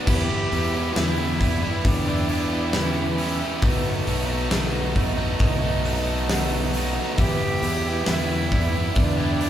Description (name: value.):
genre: post-rock.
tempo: 68 BPM.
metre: 4/4.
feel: straight.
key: unclear.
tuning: A4 = 441 Hz.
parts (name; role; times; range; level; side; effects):
deep dark ambient pad; sustained chords; 0.0-9.5 s; B4 to E6; -36 LUFS; left 2 dB; chorus, built-in reverb.
vibraphone with medium mallets; arpeggios; 0.0-9.5 s; B4 to F#5; -35 LUFS; right 3 dB; none.
cranked stack guitar; riff; 0.0-9.5 s; B2 to G4; -31 LUFS; left 7 dB; overdrive.
overdriven electric guitar; riff; 0.0-9.5 s; B2 to B4; -28 LUFS; right 6 dB; none.
rich cello; melody; 0.1-9.5 s; B3 to G4; -29 LUFS; equal; none.
modern bright fingered electric bass; bass; 0.1-9.5 s; B1 to E2; -27 LUFS; equal; none.
huge arena drum kit; drums; 0.1-9.5 s; crash cymbal, hi-hat, kick drum, snare drum; -24 LUFS; equal; none.
room: moderate large studio reverb, RT60 0.8 s.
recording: band playing live in one room.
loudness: -20 LUFS.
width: side -11 dB against mid.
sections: 0.0-9.5 A section.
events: none.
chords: 0.1 Em7; 3.6 B7; 7.2 Em7.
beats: | 0.07 0.96 1.85 2.74 | 3.63 4.52 5.41 6.29 | 7.18 8.07 8.96.